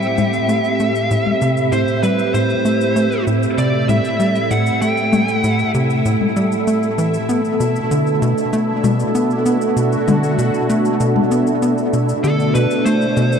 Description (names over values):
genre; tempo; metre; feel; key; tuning
ambient, sequencer-driven space music; 97 BPM; 4/4; straight; A dorian; A4 = 440 Hz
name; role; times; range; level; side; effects
fuzz lead guitar; melody; 0.0-5.7, 12.2-13.4 s; A4 to G5; -21 LUFS; equal; distortion, tape echo
sweeping resonant pad; sustained chords; 0.0-13.4 s; A2 to A4; -19 LUFS; right 1 dB; chorus
tight sequencer bass; riff; 0.0-13.4 s; A2 to B3; -18 LUFS; equal; tape echo
electronic cabasa and toms; percussion; 0.0-13.4 s; none; -24 LUFS; left 5 dB; tape echo
bubbling stepped-filter texture; texture; 0.0-13.4 s; E4 to E5; -28 LUFS; right 2 dB; chorus, built-in reverb
room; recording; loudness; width
wet huge ambient reverb, RT60 9.5 s; dark, warm production; -14 LUFS; side -7 dB against mid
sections
0.0-13.4 A section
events
none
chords
0.0 Am7; 7.3 Bm7